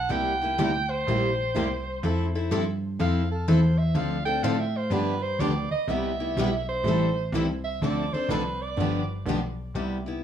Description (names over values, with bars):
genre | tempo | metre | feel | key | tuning
acoustic string swing (jazz manouche) | 124 BPM | 4/4 | swing 64% on 8ths | C major | A4 = 439 Hz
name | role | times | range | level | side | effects
clear soprano saxophone | second line | 0.0-9.1 s | A4 to G5 | -29 LUFS | right 3 dB | tape echo
plucky analog bass | bass | 0.0-10.2 s | G1 to A2 | -27 LUFS | equal | none
picked plugged-in steel-string acoustic guitar | accompaniment | 0.1-9.4 s | C3 to A4 | -31 LUFS | right 4 dB | none
picked steel-string acoustic guitar | accompaniment | 0.1-10.2 s | C3 to A4 | -29 LUFS | left 5 dB | none
room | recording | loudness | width
moderate studio reverb, RT60 0.5 s | studio ambience | -23 LUFS | side -9 dB against mid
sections
0.0-9.7 A section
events
soprano saxophone solo 0.0-9.7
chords
0.1 C7; 2.0 Fmaj7; 4.0 Dm7; 4.9 G7; 5.9 Cmaj7; 6.9 Am7; 7.8 Dm7; 8.8 G7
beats
| 0.10 0.58 1.07 1.55 | 2.03 2.52 3.00 3.48 | 3.96 4.44 4.92 5.41 | 5.89 6.37 6.85 7.33 | 7.82 8.30 8.78 9.27 | 9.75